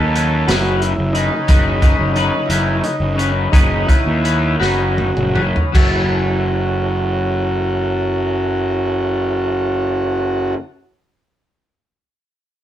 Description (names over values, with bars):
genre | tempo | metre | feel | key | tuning
psychedelic rock | 51-60 BPM (dotted quarters) | 6/8 | straight | F# dorian | A4 = 440 Hz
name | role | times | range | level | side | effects
overdriven combo organ | melody | 0.0-10.5 s | C#4 to A4 | -21 LUFS | right 1 dB | none
percussive tonewheel organ | sustained chords | 0.0-10.6 s | E4 to D#6 | -29 LUFS | right 3 dB | slow rotary speaker, chorus vibrato
twangy electric guitar | riff | 0.0-10.6 s | F#3 to B4 | -21 LUFS | left 4 dB | rotary speaker
fuzz picked electric bass | bass | 0.0-10.5 s | F#1 to D#2 | -19 LUFS | equal | overdrive
crunchy breakbeat drum kit | drums | 0.2-5.9 s | crash cymbal, hi-hat, kick drum, snare drum, toms | -16 LUFS | equal | none
room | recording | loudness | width
moderate studio reverb, RT60 0.6 s | band playing live in one room | -14 LUFS | side -11 dB against mid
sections
0.0-5.8 A section; 5.8-10.5 B section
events
slowing down 1.5-5.8; drum fill 4.6-5.8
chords
0.0 Badd9/F#; 5.8 F#m7